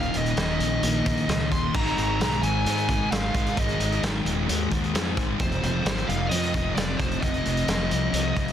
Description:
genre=rock, shoegaze and dream pop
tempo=131 BPM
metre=4/4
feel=straight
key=unclear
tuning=A4 = 442 Hz
part: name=fuzz lead guitar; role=melody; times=0.0-8.5 s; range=C5 to C6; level=-29 LUFS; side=equal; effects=distortion, analog delay
part: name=thick fuzz guitar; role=riff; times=0.0-8.5 s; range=Eb2 to Ab3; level=-26 LUFS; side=left 1 dB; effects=distortion, lush chorus
part: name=fuzz fingered electric bass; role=bass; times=0.0-8.5 s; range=Eb1 to Ab2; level=-28 LUFS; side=equal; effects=overdrive
part: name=loose indie drum kit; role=drums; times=0.0-8.5 s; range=crash cymbal, hi-hat, kick drum, snare drum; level=-28 LUFS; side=equal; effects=none
room=small room ambience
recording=dense, heavily limited modern master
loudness=-22 LUFS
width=side -10 dB against mid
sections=0.0-8.5 A section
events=none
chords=0.0 Eb7(no3); 1.8 Ab5; 5.4 Fm7

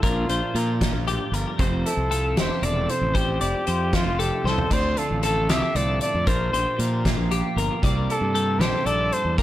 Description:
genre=math rock and midwest emo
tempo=77 BPM (dotted quarters)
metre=6/8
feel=straight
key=F major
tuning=A4 = 437 Hz
part: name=warm trumpet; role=melody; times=0.0-9.4 s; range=F4 to E5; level=-27 LUFS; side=equal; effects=dub echo
part: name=twelve-string electric guitar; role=accompaniment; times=0.0-9.4 s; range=F2 to G4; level=-30 LUFS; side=right 6 dB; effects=dub echo
part: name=twelve-string electric guitar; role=arpeggios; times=0.0-9.4 s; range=G4 to D5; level=-28 LUFS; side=left 6 dB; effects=analog chorus, dub echo
part: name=fuzz fingered electric bass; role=bass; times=0.0-9.4 s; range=E1 to Bb2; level=-25 LUFS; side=equal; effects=overdrive
part: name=loose indie drum kit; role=drums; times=0.0-9.4 s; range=hi-hat, kick drum, snare drum, splash cymbal, toms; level=-26 LUFS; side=equal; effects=none
room=small room reverb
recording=echo-heavy mix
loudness=-20 LUFS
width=side -13 dB against mid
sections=0.0-9.4 A section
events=drum fill 4.5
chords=0.0 Bb69; 1.6 Fmaj9; 4.7 Dm7; 6.3 Bb69; 7.8 C13

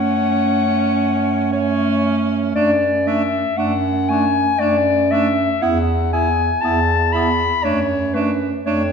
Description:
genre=classical, lyrical piece for single-reed quartet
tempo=58 BPM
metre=3/4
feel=rubato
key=unclear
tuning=A4 = 443 Hz
part: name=mellow clarinet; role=melody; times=0.0-8.9 s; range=B4 to B5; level=-19 LUFS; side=left 6 dB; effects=none
part: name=bright alto saxophone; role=second line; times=0.0-8.8 s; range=C#4 to E4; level=-24 LUFS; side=right 4 dB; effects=none
part: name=dark clarinet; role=accompaniment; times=0.0-8.8 s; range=A3 to B3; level=-22 LUFS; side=right 2 dB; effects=none
part: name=warm bass clarinet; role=bass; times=0.0-8.9 s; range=E2 to F#2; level=-21 LUFS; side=right 3 dB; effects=none
room=wet recital hall reverb, RT60 1.6 s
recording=heard from further back in the room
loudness=-15 LUFS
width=side -6 dB against mid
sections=0.0-8.9 A section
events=none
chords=0.0 F#m; 5.6 E5; 7.6 D/F#

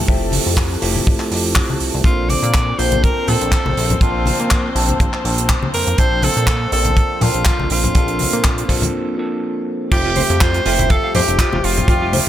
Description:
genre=nu-disco, nu disco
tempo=122 BPM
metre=4/4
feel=swing 55% on 16ths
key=F major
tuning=A4 = 442 Hz
part: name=overdriven tine electric piano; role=accompaniment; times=0.0-12.3 s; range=F3 to E5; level=-22 LUFS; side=equal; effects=phaser, low-pass filter, tape echo
part: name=rich studio string section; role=sustained chords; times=0.0-12.3 s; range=G3 to C5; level=-28 LUFS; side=left 2 dB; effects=sidechain pumping
part: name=chorused synth bass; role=bass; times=0.1-12.2 s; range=F1 to Bb2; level=-20 LUFS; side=equal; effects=sidechain pumping
part: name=kick drum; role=drums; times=0.1-12.0 s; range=none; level=-16 LUFS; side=equal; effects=studio reverb
part: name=tight funk drum kit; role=drums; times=0.3-12.2 s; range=crash cymbal, handclaps, hi-hat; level=-21 LUFS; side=right 3 dB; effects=studio reverb
part: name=congas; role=percussion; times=0.3-12.2 s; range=none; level=-23 LUFS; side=left 2 dB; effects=none
part: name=bright tenor saxophone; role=melody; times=2.0-12.3 s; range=F4 to D5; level=-21 LUFS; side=equal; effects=digital delay
part: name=mellow electric guitar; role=riff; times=9.9-12.3 s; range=E4 to F5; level=-24 LUFS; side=right 4 dB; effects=lush chorus
room=little or no reverb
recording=none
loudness=-14 LUFS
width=side -12 dB against mid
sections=0.0-9.9 A section; 9.9-12.3 B section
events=break 8.9-9.9; drop 9.9-12.3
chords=0.0 Fmaj9; 2.0 Bbmaj9; 9.9 Fmaj9

